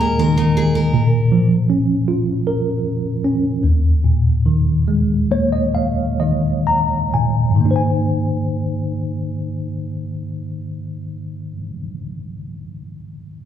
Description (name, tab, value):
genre	pop ballad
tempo	60-80 BPM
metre	4/4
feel	straight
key	Ab major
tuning	A4 = 435 Hz
part	tine electric piano	accompaniment	0.0-13.5 s	Eb2 to Bb5	-17 LUFS	equal	overdrive, fast stereo tremolo
part	picked steel-string acoustic guitar	arpeggios	0.0-1.5 s	Eb3 to Bb4	-22 LUFS	left 1 dB	none
room	wet large studio reverb, RT60 1.4 s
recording	band playing live in one room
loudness	-16 LUFS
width	side -9 dB against mid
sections	0.0-7.6 A section; 7.6-11.7 B section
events	slowing down 0.9-7.6; tine electric piano fill 4.9-7.6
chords	0.0 Ebsus4; 0.9 Bbm; 3.6 Ebsus4; 7.6 Abadd9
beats	0.18 | 0.94 1.69 2.45 3.23 | 4.04 4.87 5.75 6.66 | 7.63 8.64 9.64 10.65